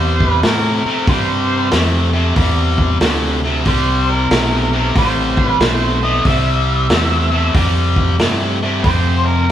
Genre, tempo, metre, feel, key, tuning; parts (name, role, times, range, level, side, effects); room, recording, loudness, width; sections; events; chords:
blues rock power trio and southern rock; 93 BPM; 4/4; swing 64% on 8ths; C major; A4 = 435 Hz
octave-fuzz lead guitar; melody; 0.0-9.5 s; Bb4 to E5; -20 LUFS; right 1 dB; distortion
distorted electric guitar; riff; 0.0-9.5 s; F2 to A3; -18 LUFS; left 1 dB; overdrive
growling fingered electric bass; bass; 0.0-9.5 s; A1 to A2; -18 LUFS; equal; overdrive
vintage drum kit; drums; 0.2-9.5 s; hi-hat, kick drum, snare drum; -18 LUFS; equal
moderate large studio reverb, RT60 0.9 s; band playing live in one room; -13 LUFS; side -10 dB against mid
0.0-9.5 A section
0.0 C; 8.9 F5